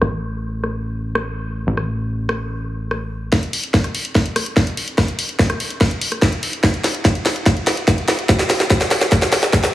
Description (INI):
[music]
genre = psychedelic trance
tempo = 145 BPM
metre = 4/4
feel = straight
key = unclear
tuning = A4 = 440 Hz
[part]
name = tight sequencer bass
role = bass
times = 0.0-3.3 s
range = A1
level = -23 LUFS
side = equal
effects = none
[part]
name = garage drum kit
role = drums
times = 0.0-9.7 s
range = hi-hat, rim click, snare drum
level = -18 LUFS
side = equal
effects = small room ambience
[part]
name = electronic kick drum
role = drums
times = 3.3-9.6 s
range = none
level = -16 LUFS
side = equal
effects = small room ambience
[sound]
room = moderate plate reverb, RT60 2.0 s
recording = heavily compressed radio sound, multiband compression, low-pass filter, small room reverb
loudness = -16 LUFS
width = side -14 dB against mid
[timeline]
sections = 0.0-3.3 A section; 3.3-9.7 B section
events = filter sweep 0.0-3.3; build-up 3.3-9.7; drum fill 3.3-9.7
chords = none